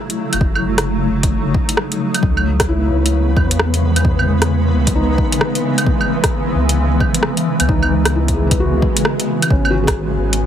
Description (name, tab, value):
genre	future garage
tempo	132 BPM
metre	4/4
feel	swing 63% on 16ths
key	C# minor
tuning	A4 = 440 Hz
part	granular cloud pad	sustained chords	0.0-10.5 s	B2 to E4	-19 LUFS	equal	built-in reverb, sidechain pumping
part	deep house drum kit	drums	0.1-10.4 s	claves, hi-hat, rim click	-20 LUFS	right 1 dB	overdrive
part	warm sub bass	bass	0.3-10.5 s	F#1 to E2	-18 LUFS	equal	none
part	electronic kick drum	drums	0.4-9.9 s	none	-18 LUFS	equal	overdrive
part	flickering grainy texture	texture	2.8-9.5 s	B3 to B4	-26 LUFS	left 1 dB	built-in reverb
part	felt-muted upright piano	accompaniment	2.7-10.5 s	B3 to B4	-23 LUFS	left 3 dB	sidechain pumping, dub echo
part	swell	sound effects	8.7-9.5 s	none	-28 LUFS	right 5 dB	none
room	light reverb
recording	heavily compressed radio sound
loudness	-13 LUFS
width	side -9 dB against mid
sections	0.0-9.5 A section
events	swell 8.7-9.5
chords	0.0 F#m7; 2.2 C#m7; 9.5 G#m